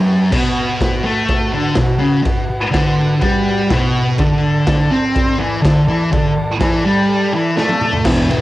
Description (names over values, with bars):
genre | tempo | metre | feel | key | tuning
garage rock duo or trio | 124 BPM | 4/4 | straight | unclear | A4 = 443 Hz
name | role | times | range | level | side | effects
combo organ | sustained chords | 0.0-8.4 s | F#4 to B5 | -24 LUFS | equal | cassette tape
thick fuzz guitar | riff | 0.0-8.4 s | E2 to C4 | -14 LUFS | equal | distortion, cassette tape
raw garage drum kit | drums | 0.3-8.4 s | crash cymbal, kick drum, ride cymbal, snare drum, toms | -19 LUFS | equal | cassette tape
room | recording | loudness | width
light reverb, small room ambience | home recording on cassette | -13 LUFS | side -16 dB against mid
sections
0.3-8.1 A section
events
drum fill 7.6-8.1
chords
0.3 B5; 4.2 D5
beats
| 0.32 0.80 1.28 1.77 | 2.25 2.73 3.22 3.70 | 4.19 4.67 5.16 5.64 | 6.12 6.61 7.09 7.58 | 8.06